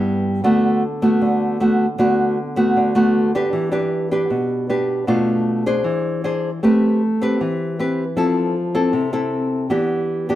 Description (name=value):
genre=bossa nova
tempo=155 BPM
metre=4/4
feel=straight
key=E minor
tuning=A4 = 440 Hz
part: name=nylon-string guitar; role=solo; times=0.0-10.4 s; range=G2 to C5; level=-16 LUFS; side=equal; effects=none
room=light reverb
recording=band playing live in one room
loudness=-16 LUFS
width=side -13 dB against mid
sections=0.0-6.6 A section; 6.6-10.4 B section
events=none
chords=0.4 Bm7/D; 3.5 Em7; 5.1 Bm7b5; 5.8 E7b13; 6.6 Am9; 8.2 Fmaj7; 9.7 Em7